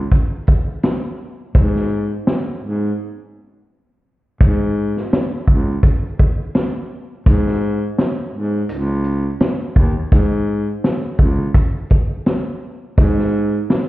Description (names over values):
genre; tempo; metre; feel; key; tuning
hip hop, boom-bap hip-hop; 84 BPM; 4/4; swing 57% on 16ths; unclear; A4 = 440 Hz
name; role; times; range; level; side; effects
dark baritone saxophone; bass; 0.0-13.6 s; C#2 to G#2; -18 LUFS; equal; none
vintage drum kit; drums; 0.1-13.9 s; hi-hat, kick drum, snare drum; -16 LUFS; equal; none
room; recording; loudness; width
light reverb; heard muffled through a wall, stone room reverb, EQ, nothing above 10.6 kHz; -15 LUFS; side -16 dB against mid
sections
0.0-4.4 A section; 4.4-13.9 A section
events
break 3.0-4.4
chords
none